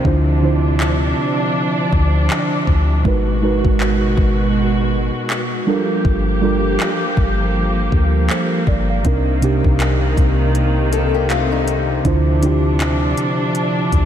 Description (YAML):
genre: contemporary R&B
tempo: 80 BPM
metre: 4/4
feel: swing 58% on 16ths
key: unclear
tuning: A4 = 440 Hz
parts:
  - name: muted felt-like synth keys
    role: accompaniment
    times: 0.0-14.1 s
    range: C3 to F5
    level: -20 LUFS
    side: right 3 dB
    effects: chorus
  - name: warm studio string section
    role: sustained chords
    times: 0.0-14.1 s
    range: Cb3 to G4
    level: -20 LUFS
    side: equal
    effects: sidechain pumping
  - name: soft 808-style bass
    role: bass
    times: 0.1-14.1 s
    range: G1 to D2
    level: -18 LUFS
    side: left 1 dB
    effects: none
  - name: smooth R&B drum kit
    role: drums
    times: 0.1-14.1 s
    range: handclaps, hi-hat, kick drum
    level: -22 LUFS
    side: left 1 dB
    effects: none
  - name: fingerpicked old ladder-braced acoustic guitar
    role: arpeggios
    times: 10.9-12.0 s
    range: G3 to A4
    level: -24 LUFS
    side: left 10 dB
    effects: ping-pong delay
room: moderate huge ambient reverb, RT60 4.6 s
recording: dreamy mix soaked in reverb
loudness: -14 LUFS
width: side -10 dB against mid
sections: 0.0-14.1 A section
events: break 0.0-9.0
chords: 0.0 Dm7; 3.0 Abm7; 5.7 Gm7; 9.0 Cm7; 12.0 Dm7